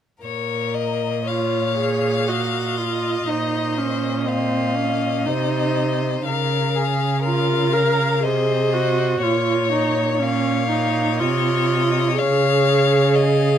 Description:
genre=classical, slow romantic movement for string quartet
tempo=61 BPM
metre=3/4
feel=rubato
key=Bb minor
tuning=A4 = 440 Hz
part: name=clear violin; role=melody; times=0.2-13.6 s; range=C5 to F5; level=-25 LUFS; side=left 10 dB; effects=none
part: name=clear violin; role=second line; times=0.2-13.6 s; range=Ab4 to F5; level=-25 LUFS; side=left 5 dB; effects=none
part: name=rich cello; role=bass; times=0.2-13.6 s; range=Bb2 to Db3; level=-23 LUFS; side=right 3 dB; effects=none
part: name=dark viola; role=accompaniment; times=1.3-13.6 s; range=C4 to Bb4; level=-22 LUFS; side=right 2 dB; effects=none
room=light reverb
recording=close, detailed microphones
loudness=-18 LUFS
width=side -9 dB against mid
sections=0.2-13.6 A section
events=none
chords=0.2 Bbm; 3.3 F5/Bb; 6.3 Bbm/Db; 9.2 Bbm; 12.2 Db

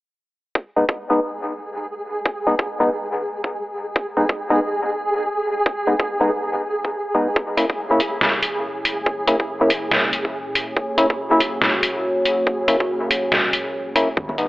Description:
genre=deep dubstep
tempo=141 BPM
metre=4/4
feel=swing 57% on 16ths, half-time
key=G# minor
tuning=A4 = 436 Hz
part: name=electronic kick drum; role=drums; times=0.6-14.3 s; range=none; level=-20 LUFS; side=equal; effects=high-pass filter on kick
part: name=flickering grainy texture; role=texture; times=1.4-14.5 s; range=G#4 to A#5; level=-25 LUFS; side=equal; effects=built-in reverb
part: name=percussive organ stab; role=stabs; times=0.8-14.5 s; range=G#3 to E4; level=-21 LUFS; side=left 1 dB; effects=lush chorus, dub echo
part: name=dark analog pad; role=sustained chords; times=7.4-14.5 s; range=G#3 to C#5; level=-25 LUFS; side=equal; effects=chorus, phaser
part: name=trip hop sampler-style drum kit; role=drums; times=7.6-14.5 s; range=hi-hat, snare drum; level=-20 LUFS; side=equal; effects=none
part: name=saturated sub bass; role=bass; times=14.2-14.5 s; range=G#1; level=-35 LUFS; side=equal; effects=none
part: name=congas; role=percussion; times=14.3-14.4 s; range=none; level=-31 LUFS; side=equal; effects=none
room=moderate lush hall reverb, RT60 1.6 s, digital ambience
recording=telephone sound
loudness=-18 LUFS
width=side -19 dB against mid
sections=0.6-14.2 A section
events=kick drops out 13.3-14.2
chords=0.6 G#m; 7.4 A#dim

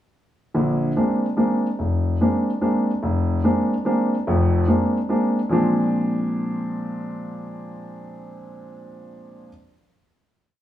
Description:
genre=jazz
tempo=145 BPM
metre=3/4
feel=swing 65% on 8ths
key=Bb mixolydian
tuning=A4 = 441 Hz
part: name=warm grand piano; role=solo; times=0.5-9.5 s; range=F1 to D4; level=-20 LUFS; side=equal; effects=none
room=moderate stone room reverb, RT60 1.1 s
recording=band playing live in one room, small room ambience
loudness=-19 LUFS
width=side -12 dB against mid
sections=0.6-5.5 A section; 5.5-8.0 final chord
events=none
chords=0.6 Bb9

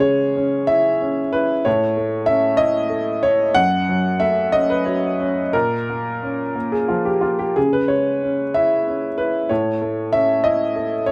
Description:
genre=neoclassical minimalist piano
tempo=58-65 BPM (dotted quarters)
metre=6/8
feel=rubato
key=C# minor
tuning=A4 = 440 Hz
part: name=clear upright piano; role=solo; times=0.0-11.1 s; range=F#2 to F#5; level=-19 LUFS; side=equal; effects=none
room=moderate studio reverb, RT60 0.6 s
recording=none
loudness=-19 LUFS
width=mono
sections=0.0-11.1 A section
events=none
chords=0.0 C#m; 1.7 A; 3.6 F#m; 5.5 A#m; 7.6 C#m; 9.5 A

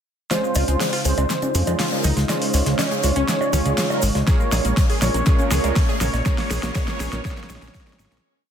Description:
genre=progressive house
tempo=121 BPM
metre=4/4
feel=straight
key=Db major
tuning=A4 = 441 Hz
part: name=wide unison lead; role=melody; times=0.3-8.2 s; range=C5 to Db5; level=-27 LUFS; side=right 1 dB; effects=sidechain pumping, digital delay
part: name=soft synth bell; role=second line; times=0.3-8.2 s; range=C5 to Db5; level=-37 LUFS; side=equal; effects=none
part: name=lush unison pad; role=sustained chords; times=0.3-8.2 s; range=Db3 to F4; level=-31 LUFS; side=left 1 dB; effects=chorus, sidechain pumping
part: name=wide unison pluck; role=arpeggios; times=0.3-8.2 s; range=Ab3 to Ab4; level=-30 LUFS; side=equal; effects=sidechain pumping, digital delay
part: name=soft supersaw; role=stabs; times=0.3-8.2 s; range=Ab3 to Db5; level=-28 LUFS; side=right 3 dB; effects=sidechain pumping, low-pass filter, digital delay
part: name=deep house drum kit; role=drums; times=0.3-8.3 s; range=hi-hat, snare drum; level=-27 LUFS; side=left 1 dB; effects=none
part: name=gated 80s drum kit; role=drums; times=0.3-8.2 s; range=hi-hat, snare drum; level=-31 LUFS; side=left 3 dB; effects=high-pass filter on hats, high-pass filter on snare, high-pass filter on room
part: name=egg shaker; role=percussion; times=0.3-8.2 s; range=none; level=-35 LUFS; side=right 4 dB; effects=none
part: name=electronic bongos, congas and toms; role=percussion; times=0.3-8.2 s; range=none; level=-30 LUFS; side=right 1 dB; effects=sidechain pumping on perc, sidechain pumping on toms
part: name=riser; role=sound effects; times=3.9-8.2 s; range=none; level=-36 LUFS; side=equal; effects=none
part: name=fat analog bass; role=bass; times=0.6-8.2 s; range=Ab1 to F2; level=-21 LUFS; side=equal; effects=sidechain pumping
part: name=electronic kick drum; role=drums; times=4.3-7.8 s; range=none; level=-19 LUFS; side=equal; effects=none
room=light reverb, digital ambience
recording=dense, heavily limited modern master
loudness=-18 LUFS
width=side -8 dB against mid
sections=0.3-8.2 build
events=build-up 0.3-8.2; drum fill 0.3-8.2; filter sweep on supersaw synth 0.3-8.2; filter sweep on analog synth pad 0.3-8.2; filter sweep on analog synth lead 0.3-8.2; fade-out 5.6-8.2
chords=0.3 Dbmaj7; 4.3 Bbm7

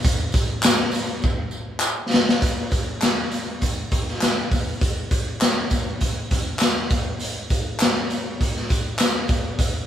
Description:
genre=soul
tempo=101 BPM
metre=4/4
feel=straight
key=none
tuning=none
part: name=raw garage drum kit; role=drums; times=0.0-9.7 s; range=hi-hat, kick drum, snare drum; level=-20 LUFS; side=equal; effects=none
part: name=tambourine and handclaps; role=percussion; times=0.0-9.7 s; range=none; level=-26 LUFS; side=equal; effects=none
room=light reverb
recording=band playing live in one room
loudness=-20 LUFS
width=side -10 dB against mid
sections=0.0-2.4 A section; 2.4-9.9 B section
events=drum fill 1.2-2.4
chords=none

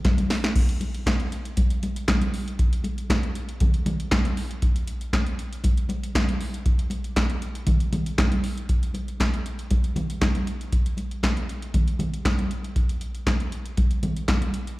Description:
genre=funk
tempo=118 BPM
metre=4/4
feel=straight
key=none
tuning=none
part: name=electro analog drum machine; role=drums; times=0.0-14.8 s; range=crash cymbal, handclaps, hi-hat, kick drum, snare drum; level=-23 LUFS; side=equal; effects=none
part: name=congas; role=percussion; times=0.1-14.5 s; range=none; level=-30 LUFS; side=equal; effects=slapback echo
room=light reverb, digital ambience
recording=live gig heard through the venue's PA, club reverb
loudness=-22 LUFS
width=side -19 dB against mid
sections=0.0-8.7 A section; 8.7-14.8 B section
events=drum fill 0.0-0.6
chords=none

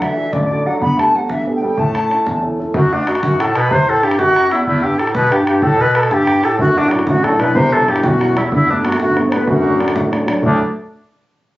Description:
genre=celtic folk, Celtic jig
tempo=125 BPM (dotted quarters)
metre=6/8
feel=straight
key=D mixolydian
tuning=A4 = 440 Hz
part: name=baroque flute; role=melody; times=0.0-10.6 s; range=D4 to B5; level=-16 LUFS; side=equal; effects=plate reverb
part: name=clear bass clarinet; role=second line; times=0.0-10.6 s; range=D2 to B3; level=-19 LUFS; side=left 1 dB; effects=none
part: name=dark upright piano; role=accompaniment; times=0.0-2.7, 6.6-10.6 s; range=D1 to A4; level=-18 LUFS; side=equal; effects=none
part: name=bodhran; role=percussion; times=0.0-10.6 s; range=none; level=-21 LUFS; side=equal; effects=none
room=wet studio ambience, RT60 0.5 s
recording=recorded on a phone in the room, studio reverb, nothing above 7.7 kHz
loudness=-12 LUFS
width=side -16 dB against mid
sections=0.0-2.7 A section; 2.7-10.4 B section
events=none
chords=0.0 D; 0.8 Gadd9; 1.8 A; 2.7 N.C.; 6.6 Dadd9; 7.5 Emadd9; 8.5 Gadd9; 9.5 D

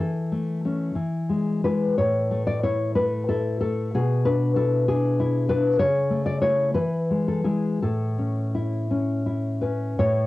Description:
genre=romantic piece for solo classical guitar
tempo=54-65 BPM (dotted quarters)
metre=6/8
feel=rubato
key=A major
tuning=A4 = 440 Hz
part: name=nylon-string guitar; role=solo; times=0.0-10.3 s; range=A2 to D5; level=-21 LUFS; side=left 1 dB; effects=cassette tape
room=moderate small room reverb, RT60 0.5 s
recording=home recording on cassette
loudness=-21 LUFS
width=side -17 dB against mid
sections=0.0-10.0 A section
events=none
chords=0.0 A/E; 1.0 E; 2.0 A5; 4.0 E7/B; 5.8 A/C#; 6.8 E; 7.8 A

